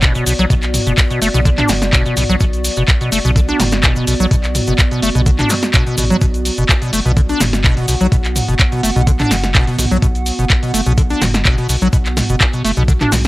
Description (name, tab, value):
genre	acid house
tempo	126 BPM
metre	4/4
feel	swing 53% on 16ths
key	B minor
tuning	A4 = 441 Hz
part	liquid acid bass	riff	0.0-13.2 s	B2 to D4	-17 LUFS	equal	tube saturation, analog chorus, sidechain pumping, tape echo
part	round analog bass	bass	0.0-13.3 s	F#1 to B1	-20 LUFS	equal	sidechain pumping
part	electronic kick drum	drums	0.0-13.0 s	none	-14 LUFS	equal	none
part	punchy analog drum machine	drums	0.0-13.3 s	handclaps, hi-hat, snare drum, toms	-18 LUFS	equal	none
part	cabasa	percussion	0.0-13.3 s	none	-27 LUFS	left 2 dB	none
part	warbly tape-like pad	texture	0.0-13.3 s	B3 to F#5	-23 LUFS	right 1 dB	chorus, built-in reverb, sidechain pumping
room	little or no reverb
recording	dry, gritty hardware recording, transformer saturation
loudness	-12 LUFS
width	side -18 dB against mid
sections	0.0-13.3 A section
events	none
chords	0.0 Bm